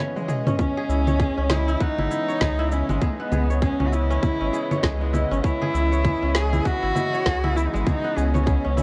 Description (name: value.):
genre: organic downtempo.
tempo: 99 BPM.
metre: 4/4.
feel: swing 60% on 16ths.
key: C# minor.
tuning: A4 = 439 Hz.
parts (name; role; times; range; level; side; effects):
bowed-like drone; sustained chords; 0.0-8.8 s; C#3 to D#5; -34 LUFS; equal; built-in reverb, phaser, sidechain pumping.
kora; arpeggios; 0.0-8.8 s; G#3 to C#5; -31 LUFS; equal; tape echo.
deep house drum kit; drums; 0.2-8.8 s; cabasa, congas, snare drum, toms; -29 LUFS; equal; none.
dark cello; melody; 0.6-8.8 s; A3 to G#4; -29 LUFS; equal; digital delay.
electronic kick drum; drums; 0.6-8.6 s; none; -26 LUFS; equal; none.
round analog bass; bass; 0.9-8.8 s; G#1 to C#2; -26 LUFS; equal; none.
room: light reverb, digital ambience.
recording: worn, warbling old tape, cassette tape, warbly pitch drift, nothing above 10.9 kHz.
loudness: -22 LUFS.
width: mono.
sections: 0.6-8.8 A section.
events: break 0.0-0.6; drum fill 0.1-0.6.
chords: 0.0 C#m7.